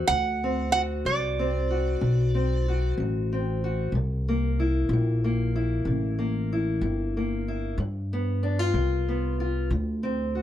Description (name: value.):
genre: acoustic country blues, solo or duo.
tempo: 62 BPM (dotted quarters).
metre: 12/8.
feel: straight.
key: unclear.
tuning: A4 = 439 Hz.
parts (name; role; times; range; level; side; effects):
fingerpicked steel-string acoustic guitar; accompaniment; 0.0-10.4 s; G2 to F#4; -28 LUFS; left 2 dB; none.
upright bass; bass; 0.0-10.4 s; G1 to G2; -26 LUFS; equal; none.
lap resonator guitar; melody; 0.1-2.9 s; D5 to F#5; -27 LUFS; right 4 dB; none.
room: light reverb.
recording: dark, warm production.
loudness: -24 LUFS.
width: side -11 dB against mid.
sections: 0.0-10.4 A section.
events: none.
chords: 0.0 D7; 3.9 C7; 7.8 G7; 9.7 D7(no3).